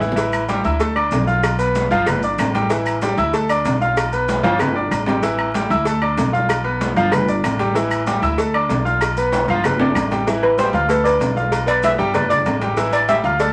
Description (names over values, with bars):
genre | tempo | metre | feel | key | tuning
latin, salsa | 190 BPM | 4/4 | straight | unclear | A4 = 440 Hz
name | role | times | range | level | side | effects
bright concert grand piano | accompaniment | 0.0-13.5 s | E3 to F6 | -22 LUFS | equal | none
upright bass | bass | 0.0-13.5 s | G1 to D2 | -26 LUFS | equal | none
congas | percussion | 0.0-13.5 s | none | -30 LUFS | equal | none
maracas | percussion | 0.0-13.5 s | none | -42 LUFS | equal | none
bongos and cowbell | percussion | 0.1-13.5 s | none | -29 LUFS | equal | none
agogo bells and timbales | percussion | 0.2-13.4 s | none | -27 LUFS | equal | none
claves | percussion | 0.3-10.1 s | none | -30 LUFS | equal | none
steel pan | melody | 10.4-13.5 s | B4 to E5 | -20 LUFS | equal | none
room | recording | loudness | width
wet club reverb, RT60 0.8 s | vinyl crackle | -18 LUFS | mono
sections
0.2-10.3 A section; 10.3-13.5 B section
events
drum fill 0.0, 4.3-5.2, 9.3-10.3; steel pan solo 10.3-13.5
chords
0.2 A5; 0.8 Dm; 1.4 G7; 2.1 G; 2.7 A5; 3.3 Dm; 4.0 G7; 4.6 G; 5.2 A5; 5.9 Dm; 6.5 G7; 7.1 G; 7.8 A5; 8.4 Dm; 9.0 G7; 9.6 G; 10.3 Am7; 10.9 Dm; 11.5 G7; 12.1 G; 12.8 A5